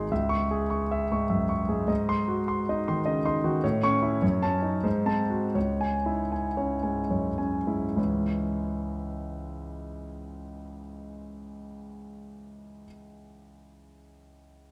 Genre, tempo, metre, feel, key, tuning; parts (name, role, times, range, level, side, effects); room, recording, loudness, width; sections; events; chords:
classical, romantic character piece for solo piano; 68-106 BPM; 3/4; rubato; C# minor; A4 = 440 Hz
clear grand piano; solo; 0.0-14.7 s; G#1 to C#6; -29 LUFS; equal
wet recital hall reverb, RT60 1.8 s; -27 LUFS; mono
0.0-8.0 A section; 8.0-12.7 B section
slowing down 2.8-8.0
0.1 C#m; 1.9 G#7; 3.6 A; 4.2 D#m7b5/F#; 4.8 G#7b9; 5.5 C#m